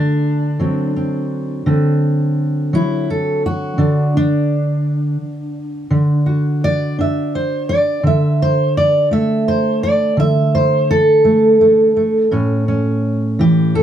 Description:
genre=acoustic country blues, solo or duo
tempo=56 BPM (dotted quarters)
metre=12/8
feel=straight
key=unclear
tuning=A4 = 440 Hz
part: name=fingerpicked steel-string acoustic guitar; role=solo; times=0.0-13.8 s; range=A2 to E5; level=-13 LUFS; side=right 1 dB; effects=none
room=light reverb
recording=none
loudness=-13 LUFS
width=side -10 dB against mid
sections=0.0-13.8 A section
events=steel-string acoustic guitar solo 0.0-13.8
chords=0.0 D7; 12.3 A7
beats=0.59 1.66 2.72 | 3.78 4.85 5.91 6.98 | 8.04 9.11 10.18 11.24 | 12.31 13.38

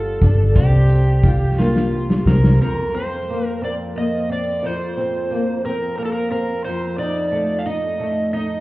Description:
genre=six-eight pop ballad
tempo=59 BPM (dotted quarters)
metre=6/8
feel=straight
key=unclear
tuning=A4 = 440 Hz
part: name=overdriven slide guitar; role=melody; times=0.0-8.6 s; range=F4 to F5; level=-24 LUFS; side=right 1 dB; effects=none
part: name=flamenco guitar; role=accompaniment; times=0.0-8.6 s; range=F2 to F4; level=-23 LUFS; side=equal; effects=double-tracked left and right
part: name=vintage muted fingered electric bass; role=bass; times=0.0-2.6 s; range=G1 to C2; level=-15 LUFS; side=equal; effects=none
part: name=loose indie drum kit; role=drums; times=0.2-2.6 s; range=hi-hat, kick drum, snare drum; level=-18 LUFS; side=equal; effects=none
room=light reverb, small room ambience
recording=heard muffled through a wall, club reverb, EQ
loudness=-16 LUFS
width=side -19 dB against mid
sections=0.0-2.6 A section; 2.6-8.6 B section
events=drum fill 1.6-2.6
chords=0.0 G7; 0.6 C7sus4; 2.6 Fsus4; 6.6 F7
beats=| 0.56 1.58 | 2.61 3.62 | 4.63 5.64 | 6.64 7.65

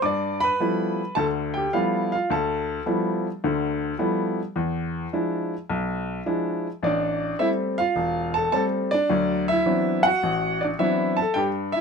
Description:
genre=solo jazz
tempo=106 BPM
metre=4/4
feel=swing 67% on 8ths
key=G mixolydian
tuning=A4 = 441 Hz
part: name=clear upright piano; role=solo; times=0.0-11.8 s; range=E1 to D6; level=-22 LUFS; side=equal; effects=none
room=light reverb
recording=none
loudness=-22 LUFS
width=side -5 dB against mid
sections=0.0-11.8 A section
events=none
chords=0.0 G13; 4.6 E7b9; 6.8 Am7; 9.1 D13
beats=| 0.02 0.59 1.16 1.73 | 2.29 2.86 3.43 3.99 | 4.56 5.13 5.69 6.26 | 6.83 7.39 7.96 8.53 | 9.09 9.66 10.23 10.79 | 11.36

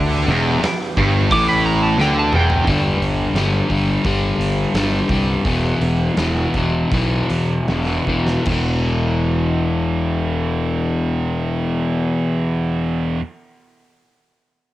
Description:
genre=hard rock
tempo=74-89 BPM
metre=4/4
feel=straight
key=E minor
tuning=A4 = 440 Hz
part: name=overdriven tonewheel organ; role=sustained chords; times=0.0-2.6 s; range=E3 to G4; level=-32 LUFS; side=right 2 dB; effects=none
part: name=heavy high-gain guitar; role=riff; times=0.0-2.7 s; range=E2 to D3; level=-23 LUFS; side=right 2 dB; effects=distortion, cassette tape
part: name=overdriven semi-hollow guitar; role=riff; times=0.0-13.2 s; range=E2 to G3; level=-20 LUFS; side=left 3 dB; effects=cassette tape
part: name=scooped high-gain guitar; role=riff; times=0.0-13.2 s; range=E2 to G3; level=-27 LUFS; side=right 7 dB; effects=distortion, cassette tape
part: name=fuzz fingered electric bass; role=bass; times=0.0-13.2 s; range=E1 to E2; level=-21 LUFS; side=equal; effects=overdrive
part: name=huge arena drum kit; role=drums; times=0.6-8.7 s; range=crash cymbal, hi-hat, kick drum, snare drum, toms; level=-25 LUFS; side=right 1 dB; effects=cassette tape
part: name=lightly driven lead guitar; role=melody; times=1.3-2.7 s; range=G5 to D6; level=-21 LUFS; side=right 2 dB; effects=cassette tape, analog delay
room=light reverb, studio reverb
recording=home recording on cassette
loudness=-16 LUFS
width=side -15 dB against mid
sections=0.0-2.7 A section; 2.7-8.5 B section; 8.5-11.7 C section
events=lead electric guitar solo 0.0-2.7; drum fill 2.0-2.7, 8.1-8.5; slowing down 2.7-8.5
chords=0.0 Em; 2.7 G5; 5.4 E5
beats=0.63 1.30 1.98 | 2.66 3.35 4.04 4.73 | 5.45 6.17 6.92 7.69 | 8.48 9.29 10.09 10.90

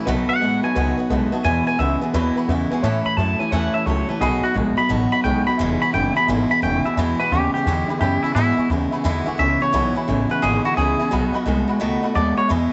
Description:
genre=rockabilly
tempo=174 BPM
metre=4/4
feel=swing 65% on 8ths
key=E major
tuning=A4 = 440 Hz
part: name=honky-tonk upright piano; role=accompaniment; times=0.0-12.6 s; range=B4 to C#6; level=-32 LUFS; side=equal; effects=none
part: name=picked swing-style acoustic guitar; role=accompaniment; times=0.0-12.7 s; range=E2 to F#4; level=-31 LUFS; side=equal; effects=none
part: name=electric guitar through a small old amp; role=riff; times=0.0-12.7 s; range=E2 to A3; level=-24 LUFS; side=equal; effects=none
part: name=upright bass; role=bass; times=0.1-12.7 s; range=E1 to A2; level=-26 LUFS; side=equal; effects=none
part: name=twangy electric guitar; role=melody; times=0.3-12.5 s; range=E4 to B5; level=-24 LUFS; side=equal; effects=lush chorus, tape echo
room=light reverb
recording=nothing above 8.0 kHz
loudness=-20 LUFS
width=mono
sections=0.0-7.0 A section; 7.0-12.7 B section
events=clean electric guitar solo 0.0-7.0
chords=0.1 B7; 1.4 E; 2.8 A; 4.2 B7; 5.6 E; 11.1 B7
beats=| 0.07 0.41 0.76 1.10 | 1.45 1.79 2.14 2.49 | 2.83 3.18 3.52 3.87 | 4.21 4.56 4.90 5.25 | 5.59 5.94 6.28 6.63 | 6.97 7.32 7.66 8.01 | 8.36 8.70 9.05 9.39 | 9.74 10.08 10.43 10.77 | 11.12 11.46 11.81 12.15 | 12.50

